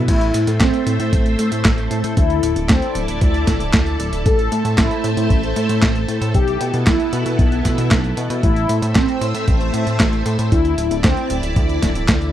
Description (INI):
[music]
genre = italo disco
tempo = 115 BPM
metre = 4/4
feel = straight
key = A minor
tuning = A4 = 440 Hz
[part]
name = string machine, full ensemble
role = sustained chords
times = 0.0-12.3 s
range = A3 to E5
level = -23 LUFS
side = equal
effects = ensemble chorus
[part]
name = chorused synth bass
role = bass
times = 0.0-12.3 s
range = D1 to B2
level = -20 LUFS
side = equal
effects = none
[part]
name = mellow synth brass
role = melody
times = 0.1-11.4 s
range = C4 to A4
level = -23 LUFS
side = left 1 dB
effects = chorus, tape echo
[part]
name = dusty soul sampler-style drum kit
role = drums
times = 0.1-12.3 s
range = crash cymbal, handclaps, hi-hat, snare drum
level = -21 LUFS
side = right 1 dB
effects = overdrive, small room ambience
[part]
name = electronic kick drum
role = drums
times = 0.1-12.2 s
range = none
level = -17 LUFS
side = equal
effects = overdrive, small room ambience
[sound]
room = little or no reverb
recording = dry, close 1970s-style studio recording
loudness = -15 LUFS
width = side -11 dB against mid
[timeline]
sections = 0.1-12.3 A section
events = none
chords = 0.1 Am; 2.2 Dsus2; 4.3 Am; 6.3 Esus4/B; 8.4 Am; 10.5 Dsus2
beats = | 0.08 0.61 1.13 1.65 | 2.17 2.69 3.21 3.74 | 4.26 4.78 5.30 5.82 | 6.34 6.87 7.39 7.91 | 8.43 8.95 9.48 10.00 | 10.52 11.04 11.56 12.08